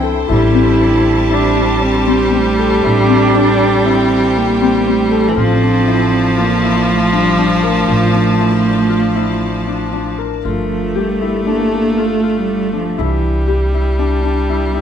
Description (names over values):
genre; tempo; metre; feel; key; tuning
contemporary instrumental, chamber music in an uneven meter; 118 BPM; 5/4; straight; G dorian; A4 = 441 Hz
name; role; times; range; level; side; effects
bright studio string section; sustained chords; 0.0-10.4 s; F3 to A5; -23 LUFS; left 2 dB; none
Celtic harp; arpeggios; 0.0-14.8 s; C4 to Bb4; -18 LUFS; left 8 dB; none
upright bass; bass; 0.0-14.8 s; G1 to C2; -19 LUFS; right 1 dB; none
dark cello; melody; 0.3-13.5 s; E3 to E4; -17 LUFS; right 4 dB; none
rich viola; second line; 0.3-14.8 s; E3 to A3; -17 LUFS; right 1 dB; none
room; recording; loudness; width
moderate recital hall reverb, RT60 1.4 s; dark, warm production; -12 LUFS; side -8 dB against mid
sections
0.0-10.4 A section; 10.4-14.8 B section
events
none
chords
0.3 Am7; 5.4 F6/A; 10.4 G5; 13.0 C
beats
| 0.29 0.80 1.31 1.83 2.34 | 2.84 3.35 3.86 4.36 4.87 | 5.37 5.87 6.37 6.88 7.38 | 7.89 8.39 8.90 9.41 9.93 | 10.44 10.96 11.46 11.97 12.48 | 12.98 13.49 13.99 14.49